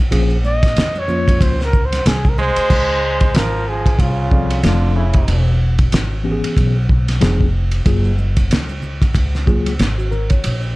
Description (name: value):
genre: hip hop, jazz-hop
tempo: 93 BPM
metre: 4/4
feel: swing 58% on 16ths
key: unclear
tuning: A4 = 439 Hz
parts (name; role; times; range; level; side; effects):
- mellow tine electric piano; accompaniment; 0.1-10.6 s; E3 to D5; -21 LUFS; left 2 dB; medium stereo tremolo
- upright bass; bass; 0.1-10.8 s; E1 to F2; -18 LUFS; equal; none
- cloth-damped thuddy drum kit; drums; 0.1-10.6 s; crash cymbal, hi-hat, kick drum, ride cymbal, snare drum; -17 LUFS; equal; none
- maracas and congas; percussion; 0.1-2.7, 7.9-10.8 s; none; -33 LUFS; right 2 dB; none
- breathy flugelhorn; melody; 0.5-5.6 s; Fb4 to Eb5; -21 LUFS; equal; slapback echo, plate reverb
- brilliant trombone; second line; 2.4-5.6 s; Db3 to Ab3; -23 LUFS; right 3 dB; slapback echo, plate reverb
room: light reverb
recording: dark, warm production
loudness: -14 LUFS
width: side -21 dB against mid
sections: 0.0-2.7 A section; 2.7-10.8 B section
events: flugelhorn solo 0.0-2.7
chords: 0.1 Bbm7; 2.7 Dbmaj7; 4.6 F6; 5.3 E6; 7.2 Fdim7; 7.9 Gbmaj9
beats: | 0.12 0.76 1.41 2.05 | 2.70 3.34 3.99 4.63 | 5.28 5.92 6.57 7.21 | 7.86 8.51 9.15 9.80 | 10.44